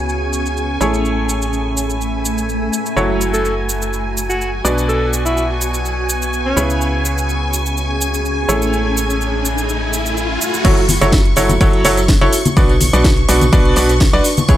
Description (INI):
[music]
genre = piano house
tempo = 125 BPM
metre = 4/4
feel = swing 53% on 16ths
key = F# minor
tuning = A4 = 440 Hz
[part]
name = string machine, violins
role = sustained chords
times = 0.0-14.6 s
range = G#5 to C#6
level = -24 LUFS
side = equal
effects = ensemble chorus, sidechain pumping
[part]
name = bright baby grand piano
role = riff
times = 0.0-14.6 s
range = B2 to D5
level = -19 LUFS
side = right 1 dB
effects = sidechain pumping, low-pass filter, tape echo
[part]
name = organ-like FM bass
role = bass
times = 0.0-14.6 s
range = F#1 to C#2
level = -20 LUFS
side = equal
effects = sidechain pumping
[part]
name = granular cloud pad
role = texture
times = 0.0-10.6 s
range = A3 to C#6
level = -24 LUFS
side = equal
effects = built-in reverb, sidechain pumping
[part]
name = house drum kit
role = drums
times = 0.1-14.6 s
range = cabasa, crash cymbal, hi-hat, rim click, snare drum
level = -22 LUFS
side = right 1 dB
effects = overdrive
[part]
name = breathy alto saxophone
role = melody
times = 3.3-6.6 s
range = C#4 to A4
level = -23 LUFS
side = equal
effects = tape echo
[part]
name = riser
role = sound effects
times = 7.8-10.6 s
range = none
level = -25 LUFS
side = equal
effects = none
[part]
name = electronic kick drum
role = drums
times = 10.6-14.6 s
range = none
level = -14 LUFS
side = equal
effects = none
[part]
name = tambourine and congas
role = percussion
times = 10.6-14.6 s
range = none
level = -21 LUFS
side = left 3 dB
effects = none
[sound]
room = light reverb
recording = none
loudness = -13 LUFS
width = side -12 dB against mid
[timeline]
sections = 0.0-10.6 A section; 10.6-14.6 B section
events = riser 7.8-10.6; drop 10.6-14.6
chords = 0.0 C#m7; 0.8 Amaj7; 3.0 F#m7; 4.6 Bm; 6.6 C#m7; 8.5 Amaj7; 10.6 F#m7; 12.3 Bm